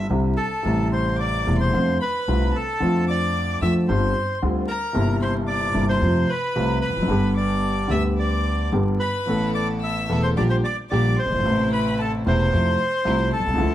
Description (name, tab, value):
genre	tango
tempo	111 BPM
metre	4/4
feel	rubato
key	unclear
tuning	A4 = 440 Hz
part	bandoneon	melody	0.0-13.7 s	A4 to E5	-26 LUFS	right 2 dB	plate reverb
part	warm concert grand piano	accompaniment	0.0-13.7 s	E1 to A4	-23 LUFS	left 1 dB	none
part	upright bass	bass	0.0-13.7 s	E1 to F2	-24 LUFS	equal	none
part	warm violin	second line	0.4-13.7 s	A5 to E6	-30 LUFS	left 6 dB	none
part	rich chamber string section	stabs	9.3-13.7 s	F3 to A4	-34 LUFS	equal	none
room	moderate studio reverb, RT60 1.0 s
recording	vinyl crackle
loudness	-19 LUFS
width	side -12 dB against mid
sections	0.0-13.7 A section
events	none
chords	0.0 Cadd9; 0.7 Am7; 1.7 F6; 2.8 Dm7/F; 3.9 G7sus4; 4.9 C7/G; 6.0 F; 7.1 G; 9.3 Asus2; 10.4 Gm/Bb; 11.5 Am; 12.5 Fmaj7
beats	0.10 | 0.65 1.20 1.74 2.28 | 2.81 3.35 3.88 4.42 | 4.95 5.48 6.01 6.55 | 7.09 7.63 8.18 8.73 | 9.29 9.83 10.38 10.91 | 11.45 11.99 12.53 13.06 | 13.59